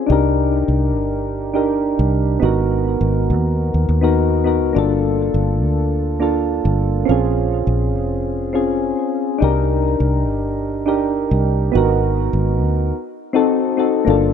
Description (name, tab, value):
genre	sunset chillout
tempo	103 BPM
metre	4/4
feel	straight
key	unclear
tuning	A4 = 439 Hz
part	soft electric-piano-like synth keys	accompaniment	0.0-14.3 s	Bb3 to Bb4	-18 LUFS	moving between left 7 dB and right 7 dB	chorus, auto-pan, low-pass filter, tape echo
part	fingered electric bass	bass	0.1-14.3 s	F1 to Eb2	-19 LUFS	equal	none
room	moderate scoring stage reverb, RT60 2.0 s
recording	none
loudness	-16 LUFS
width	side -8 dB against mid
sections	0.0-14.1 A section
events	filter sweep on synth keys 0.0-14.1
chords	0.1 Cm9; 2.4 Abm9; 4.8 Gm9; 7.1 Bbm9; 9.4 Cm9; 11.7 Abm9; 12.9 Cdim7